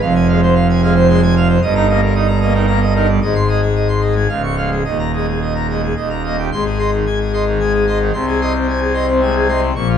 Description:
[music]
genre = classical, organ toccata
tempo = 111 BPM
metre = 3/4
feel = straight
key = Ab major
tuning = A4 = 439 Hz
[part]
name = pipe organ, full organ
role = solo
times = 0.0-10.0 s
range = Db1 to Db6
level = -13 LUFS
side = equal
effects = none
[sound]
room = wet stone room reverb, RT60 1.0 s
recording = heard from further back in the room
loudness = -13 LUFS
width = side -8 dB against mid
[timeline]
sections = 0.0-6.5 A section; 6.5-10.0 B section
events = none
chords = 0.0 Fm; 1.6 Eb/G; 3.2 Ab; 4.3 Db; 4.8 Ebsus4; 6.0 Eb; 6.5 Ab; 8.1 Ab/C

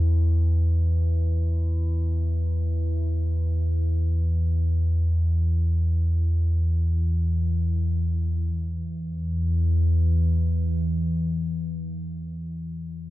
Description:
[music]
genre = dark ambient drone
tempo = free time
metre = none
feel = none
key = unclear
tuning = A4 = 440 Hz
[part]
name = deep rumbling drone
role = solo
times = 0.0-12.5 s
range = E2 to E3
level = -22 LUFS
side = equal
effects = built-in reverb, phaser
[sound]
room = wet cathedral reverb, RT60 5.8 s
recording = dark, warm production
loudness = -22 LUFS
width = side -16 dB against mid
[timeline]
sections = 0.0-8.5 A section; 8.5-13.1 B section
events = none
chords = none

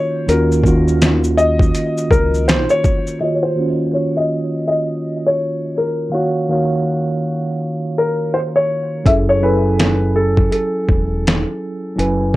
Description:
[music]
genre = lo-fi hip hop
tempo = 82 BPM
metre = 4/4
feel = swing 62% on 16ths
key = unclear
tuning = A4 = 440 Hz
[part]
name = felt-muted upright piano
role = melody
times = 0.0-12.4 s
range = Gb4 to Fb5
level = -19 LUFS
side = left 1 dB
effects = low-pass filter
[part]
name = mellow tine electric piano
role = accompaniment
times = 0.0-12.4 s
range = Eb3 to Ab5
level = -19 LUFS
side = right 1 dB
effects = medium stereo tremolo, cassette tape, low-pass filter
[part]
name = deep dub fingered electric bass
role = bass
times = 0.3-2.7, 9.1-12.4 s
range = Fb1 to Eb2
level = -19 LUFS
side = equal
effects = none
[part]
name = dusty soul sampler-style drum kit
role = drums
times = 0.3-3.2, 9.1-12.4 s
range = hi-hat, kick drum, shaker, snare drum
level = -16 LUFS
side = equal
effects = overdrive
[sound]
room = light reverb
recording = cassette tape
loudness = -14 LUFS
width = side -17 dB against mid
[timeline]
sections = 0.0-3.2 A section; 3.2-12.4 B section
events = filter sweep 3.2-12.4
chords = 0.0 Ebm9; 9.1 Gbm9

